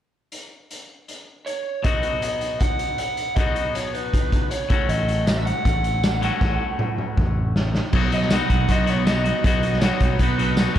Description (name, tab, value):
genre	indie rock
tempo	158 BPM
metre	4/4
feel	straight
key	B mixolydian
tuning	A4 = 440 Hz
part	raw garage drum kit	drums	0.3-10.8 s	crash cymbal, hi-hat, kick drum, snare drum, tambourine, toms	-22 LUFS	equal	none
part	lead guitar through a small cranked amp	melody	1.5-10.7 s	B4 to F#5	-26 LUFS	right 2 dB	overdrive, analog delay
part	twangy electric guitar	riff	1.8-10.8 s	A2 to F#4	-27 LUFS	left 7 dB	none
part	growling fingered electric bass	bass	4.9-10.8 s	A1 to B1	-24 LUFS	equal	overdrive
part	thick fuzz guitar	riff	7.9-10.8 s	B2 to F#4	-26 LUFS	right 9 dB	distortion, lush chorus
room	light reverb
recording	dark, warm production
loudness	-19 LUFS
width	side -11 dB against mid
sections	0.3-1.8 A section; 1.8-7.9 B section; 7.9-10.8 C section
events	drum fill 6.4-7.9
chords	0.3 N.C.; 1.8 B; 4.7 F#m/A; 7.9 B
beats	| 0.31 0.70 1.08 1.46 | 1.84 2.23 2.61 2.99 | 3.37 3.75 4.13 4.52 | 4.90 5.28 5.66 6.04 | 6.42 6.80 7.18 7.56 | 7.93 8.31 8.69 9.07 | 9.45 9.82 10.20 10.58